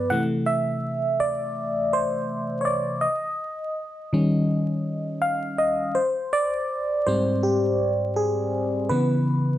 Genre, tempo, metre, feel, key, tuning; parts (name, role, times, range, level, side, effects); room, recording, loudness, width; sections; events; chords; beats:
R&B; 82 BPM; 4/4; swing 62% on 16ths; A4 = 440 Hz
FM electric piano; solo; 0.0-9.6 s; G2 to F#5; -22 LUFS; equal; chorus, phaser
moderate studio reverb, RT60 0.9 s; dark, warm production, vinyl crackle; -22 LUFS; side -12 dB against mid
0.0-9.6 A section
FM electric piano solo 0.0-9.6
0.1 C6; 3.0 D#7; 6.0 G#maj7; 8.9 C#m7
| 0.10 0.83 1.57 2.30 | 3.03 3.76 4.49 5.22 | 5.96 6.69 7.42 8.15 | 8.88